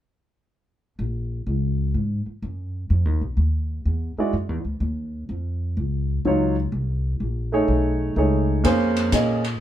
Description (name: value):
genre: jazz, small-group swing and bop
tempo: 125 BPM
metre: 4/4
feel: swing 67% on 8ths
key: Bb minor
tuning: A4 = 438 Hz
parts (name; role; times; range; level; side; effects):
- upright bass; bass; 1.0-9.6 s; Bb1 to Bb2; -23 LUFS; equal; none
- warm baby grand piano; accompaniment; 4.2-9.4 s; Gb3 to Eb5; -20 LUFS; right 1 dB; none
- open jazz drum kit; drums; 8.6-9.5 s; hi-hat, kick drum, ride cymbal; -28 LUFS; left 1 dB; none
room: moderate studio reverb, RT60 0.8 s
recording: band playing live in one room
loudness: -21 LUFS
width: side -11 dB against mid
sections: 1.0-8.6 A section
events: none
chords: 1.0 Bbm7; 2.9 B; 3.9 E9; 4.8 Ebm9; 6.7 Bbm11; 7.7 B13; 8.6 Bbm9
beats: | 0.99 1.47 1.95 2.43 | 2.91 3.39 3.87 4.34 | 4.82 5.30 5.78 6.26 | 6.74 7.21 7.69 8.17 | 8.65 9.12